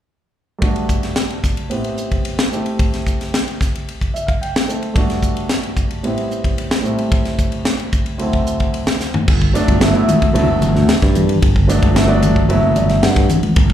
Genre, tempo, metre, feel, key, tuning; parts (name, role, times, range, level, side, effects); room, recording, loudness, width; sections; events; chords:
electric jazz fusion; 111 BPM; 4/4; straight; G major; A4 = 440 Hz
warm grand piano; accompaniment; 0.6-13.5 s; D2 to G5; -20 LUFS; right 1 dB; slapback echo
crisp fusion drum kit; drums; 0.6-13.7 s; crash cymbal, hi-hat, kick drum, ride cymbal, snare drum, toms; -18 LUFS; equal
modern bright fingered electric bass; bass; 9.3-13.7 s; F#1 to G2; -15 LUFS; equal
congas; percussion; 9.7-13.6 s; -20 LUFS; left 1 dB; slapback echo
light reverb; live gig heard through the venue's PA, club reverb; -14 LUFS; side -11 dB against mid
0.6-9.3 A section; 9.3-13.7 B section
grand piano fill 3.9-5.0, 12.5-13.6; drum fill 9.0
0.6 Gmaj7; 1.7 Am9; 2.5 Am7; 5.0 Gmaj7; 6.0 Am9; 6.8 Am7; 8.2 D7; 9.3 Gmaj7